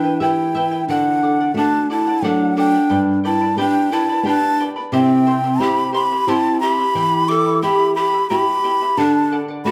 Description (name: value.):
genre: andean folk, Andean ensemble.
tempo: 89 BPM.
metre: 3/4.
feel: straight.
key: unclear.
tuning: A4 = 440 Hz.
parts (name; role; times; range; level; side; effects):
breathy large quena; melody; 0.0-9.7 s; F#5 to D6; -21 LUFS; equal; none.
breathy bright large pan pipes; second line; 0.0-9.7 s; C4 to A4; -21 LUFS; equal; none.
charango; accompaniment; 0.0-9.7 s; E4 to C6; -28 LUFS; equal; none.
nylon-string guitar; accompaniment; 0.0-9.7 s; G2 to G4; -27 LUFS; equal; none.
room: moderate recital hall reverb, RT60 1.8 s.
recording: none.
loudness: -17 LUFS.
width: mono.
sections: 0.9-9.7 A section.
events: none.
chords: 0.0 Em; 0.9 D; 2.9 G; 4.9 C; 7.0 Em; 9.0 D.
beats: 0.20 | 0.88 1.55 2.23 | 2.90 3.58 4.25 | 4.93 5.60 6.28 | 6.95 7.62 8.30 | 8.97 9.65.